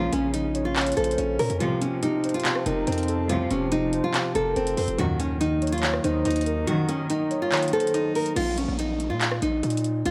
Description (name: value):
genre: hip hop, trap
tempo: 142 BPM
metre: 4/4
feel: half-time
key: Bb harmonic minor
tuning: A4 = 437 Hz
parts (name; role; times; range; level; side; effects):
- nylon-string guitar; melody; 0.0-10.1 s; Db4 to C5; -28 LUFS; equal; tape echo
- clear concert grand piano; accompaniment; 0.0-8.4 s; C3 to Eb4; -32 LUFS; equal; none
- glassy FM pad; sustained chords; 0.4-8.3 s; Eb3 to A5; -38 LUFS; equal; ensemble chorus, built-in reverb
- warm symphonic string section; stabs; 0.0-7.0 s; Bb1 to F3; -33 LUFS; equal; tape echo
- distorted 808-style bass; bass; 0.0-10.1 s; F1 to Bb2; -32 LUFS; equal; distortion
- trap drum kit; drums; 0.1-10.1 s; crash cymbal, handclaps, hi-hat, rim click; -32 LUFS; equal; vintage 12-bit sampler grit
- warm velvety synth lead; second line; 0.5-8.4 s; A4 to Db5; -34 LUFS; equal; chorus, tape echo
- downlifter; sound effects; 8.4-10.1 s; none; -39 LUFS; equal; none
room: light reverb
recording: none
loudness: -25 LUFS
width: mono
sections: 0.0-8.4 A section; 8.4-10.1 B section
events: kick muted 1.6-2.5, 6.7-8.4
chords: 0.0 Bbm; 1.6 F; 5.0 Ebm; 8.4 Bb5